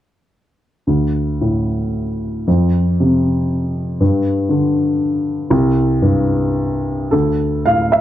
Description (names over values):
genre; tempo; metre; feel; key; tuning
neoclassical minimalist piano; 101-122 BPM; 3/4; rubato; unclear; A4 = 441 Hz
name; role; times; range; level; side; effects
dark upright piano; solo; 0.9-8.0 s; C2 to F5; -14 LUFS; equal; none
room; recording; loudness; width
light reverb; dark, warm production; -14 LUFS; side -12 dB against mid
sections
0.9-7.1 A section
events
none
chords
0.9 D5; 2.5 F5; 4.0 G5; 5.5 C5; 7.1 D5